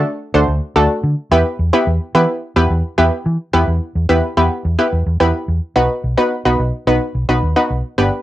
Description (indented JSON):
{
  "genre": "synth-pop",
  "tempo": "108 BPM",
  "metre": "4/4",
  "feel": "straight",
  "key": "E minor",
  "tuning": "A4 = 440 Hz",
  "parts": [
    { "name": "analog pluck", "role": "accompaniment", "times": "0.0-8.2 s", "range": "A3 to C5", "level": "-15 LUFS", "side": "equal", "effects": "chorus, cassette tape" },
    { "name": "vintage muted fingered electric bass", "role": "bass", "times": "0.0-8.1 s", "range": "G1 to E3", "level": "-17 LUFS", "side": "equal", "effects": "none" }
  ],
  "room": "moderate small room reverb, RT60 0.5 s",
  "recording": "home recording on cassette",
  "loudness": "-14 LUFS",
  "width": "side -14 dB against mid",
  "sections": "0.0-3.5 A section; 3.5-5.8 B section; 5.8-8.2 C section",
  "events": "none",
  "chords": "0.0 D; 1.3 Em; 5.8 B"
}